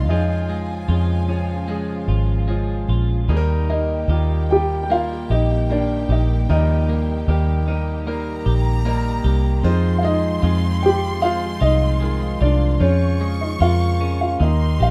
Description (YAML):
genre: pop ballad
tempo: 76 BPM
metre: 4/4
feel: straight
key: Eb major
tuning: A4 = 440 Hz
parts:
  - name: dark concert grand piano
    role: melody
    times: 0.0-14.9 s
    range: Db4 to G5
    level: -25 LUFS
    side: equal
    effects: none
  - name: warm studio violin section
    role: second line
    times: 0.0-14.9 s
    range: G5 to Db6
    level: -36 LUFS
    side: equal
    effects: none
  - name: clear grand piano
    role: accompaniment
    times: 0.0-14.9 s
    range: Eb3 to Eb5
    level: -33 LUFS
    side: equal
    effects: none
  - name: warm studio string section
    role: sustained chords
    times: 0.0-14.9 s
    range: Db3 to G4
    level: -37 LUFS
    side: equal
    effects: none
  - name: twelve-string electric guitar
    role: arpeggios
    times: 0.0-14.9 s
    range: F2 to G4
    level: -30 LUFS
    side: equal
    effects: none
  - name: vintage muted fingered electric bass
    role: bass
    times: 0.0-14.9 s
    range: Ab1 to F2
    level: -21 LUFS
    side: equal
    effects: none
room: small room ambience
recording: rough home demo mix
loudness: -20 LUFS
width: mono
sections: 0.0-14.9 A section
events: none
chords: 0.1 Db/F; 3.3 Eb; 9.6 Fm7; 12.8 Db/F; 14.4 Eb